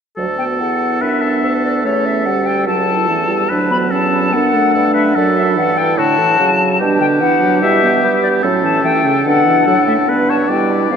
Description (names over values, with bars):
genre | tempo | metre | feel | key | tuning
quick classical-period movement for wind quintet | 145 BPM | 4/4 | straight | D major | A4 = 440 Hz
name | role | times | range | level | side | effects
clear oboe | second line | 0.2-11.0 s | F#4 to D5 | -19 LUFS | left 1 dB | none
dark clarinet | accompaniment | 0.2-11.0 s | B3 to F#4 | -20 LUFS | right 4 dB | none
mellow French horn | accompaniment | 0.2-11.0 s | C#3 to B3 | -19 LUFS | right 1 dB | none
mellow bassoon | bass | 0.2-11.0 s | C#2 to B3 | -21 LUFS | right 3 dB | none
concert flute | melody | 0.4-11.0 s | C#5 to B5 | -17 LUFS | left 5 dB | none
room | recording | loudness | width
wet cathedral reverb, RT60 5.1 s | in a vast, echoing space | -12 LUFS | side -7 dB against mid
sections
0.2-11.0 A section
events
none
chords
0.2 D; 1.8 A7; 3.5 D; 5.2 D/F#; 6.8 G/B; 7.6 Em/B; 8.4 A; 9.3 Bm; 10.1 G